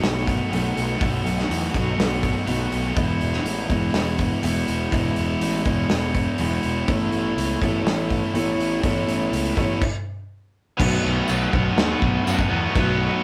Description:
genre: rock, shoegaze and dream pop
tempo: 122 BPM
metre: 4/4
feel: straight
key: B mixolydian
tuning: A4 = 440 Hz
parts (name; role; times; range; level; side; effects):
- biting overdriven guitar; riff; 0.0-13.2 s; E2 to F#4; -29 LUFS; equal; none
- mellow electric guitar; riff; 0.0-13.2 s; B2 to C#5; -28 LUFS; equal; none
- fuzz picked electric bass; bass; 0.0-13.1 s; E1 to F#2; -29 LUFS; equal; overdrive
- loose indie drum kit; drums; 0.0-12.9 s; crash cymbal, hi-hat, kick drum, snare drum; -28 LUFS; equal; none
- tight distorted guitar; riff; 10.8-13.2 s; B2 to B3; -28 LUFS; equal; distortion
- tambourine; percussion; 11.3-12.4 s; none; -41 LUFS; equal; none
room: wet studio reverb, RT60 0.5 s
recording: rough rehearsal-room recording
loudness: -22 LUFS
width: mono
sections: 0.0-10.8 A section; 10.8-13.2 B section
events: stop 9.8-10.8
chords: 0.0 B7; 3.0 E; 6.9 Aadd9; 10.8 B7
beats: 0.02 0.51 | 1.00 1.49 1.98 2.47 | 2.96 3.45 3.94 4.43 | 4.92 5.41 5.90 6.39 | 6.88 7.37 7.86 8.35 | 8.84 9.33 9.82 10.31 | 10.80 11.29 11.78 12.27 | 12.76

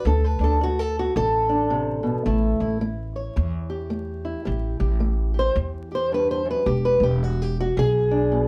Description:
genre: acoustic country blues, solo or duo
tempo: 109 BPM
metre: 4/4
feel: swing 61% on 8ths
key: A mixolydian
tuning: A4 = 440 Hz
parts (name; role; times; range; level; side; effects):
- fingerpicked acoustic archtop guitar; melody; 0.0-8.5 s; E2 to C#5; -25 LUFS; equal; none
- upright bass; bass; 0.1-8.5 s; E1 to E2; -27 LUFS; equal; none
room: wet small room reverb, RT60 0.5 s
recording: heard from further back in the room, vinyl crackle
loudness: -23 LUFS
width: mono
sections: 0.0-8.5 A section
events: steel-string acoustic guitar solo 0.0-8.5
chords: 0.0 D5; 2.3 A7; 6.7 E7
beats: | 0.07 0.62 1.17 1.71 | 2.26 2.81 3.36 3.91 | 4.46 5.02 5.57 6.12 | 6.67 7.23 7.78 8.33

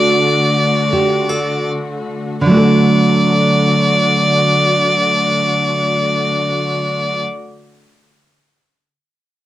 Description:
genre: celtic folk, Celtic slow air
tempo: 38-46 BPM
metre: 3/4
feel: rubato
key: D major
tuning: A4 = 436 Hz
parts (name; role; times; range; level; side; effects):
- clear fiddle; melody; 0.0-7.2 s; D5; -16 LUFS; equal; none
- nylon-string guitar; accompaniment; 0.0-7.4 s; D3 to A4; -16 LUFS; right 1 dB; cassette tape
- rich studio string section; sustained chords; 0.0-7.2 s; D3 to F#4; -20 LUFS; left 1 dB; cassette tape
room: moderate small room reverb, RT60 0.5 s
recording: home recording on cassette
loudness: -12 LUFS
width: side -14 dB against mid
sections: 0.0-2.5 A section; 2.5-7.0 B section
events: slowing down 0.0-2.5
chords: 0.0 D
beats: 0.94 | 2.46 3.99 5.49

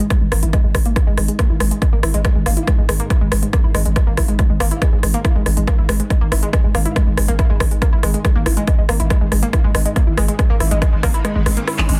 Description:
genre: driving peak-time techno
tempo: 140 BPM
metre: 4/4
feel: straight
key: unclear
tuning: A4 = 440 Hz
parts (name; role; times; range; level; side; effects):
- analog pluck; riff; 0.0-11.9 s; G#3 to E4; -26 LUFS; equal; chorus, overdrive, sidechain pumping, digital delay
- deep dark ambient pad; drone; 0.1-12.0 s; G#2 to D#3; -32 LUFS; equal; none
- techno drum kit; drums; 0.0-12.0 s; handclaps, hi-hat, rim click; -25 LUFS; equal; sidechain pumping on hats, sidechain pumping on cymbals
- electronic kick drum; drums; 0.1-11.1 s; none; -19 LUFS; equal; none
- growling 808-style bass; bass; 0.2-12.0 s; G#1; -22 LUFS; equal; tube saturation, sidechain pumping, low-pass filter
- riser; sound effects; 10.6-12.0 s; none; -36 LUFS; equal; none
room: little or no reverb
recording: dense, heavily limited modern master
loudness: -16 LUFS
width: mono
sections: 0.0-12.0 A section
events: filter sweep on synth arpeggio sound 0.0-12.0; kick drops out 11.2-12.0; drum fill 11.8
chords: 0.0 G#5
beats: | 0.10 0.53 0.96 1.39 | 1.82 2.25 2.67 3.10 | 3.53 3.96 4.39 4.82 | 5.25 5.67 6.10 6.53 | 6.96 7.39 7.82 8.25 | 8.68 9.10 9.53 9.96 | 10.39 10.82 11.25 11.68

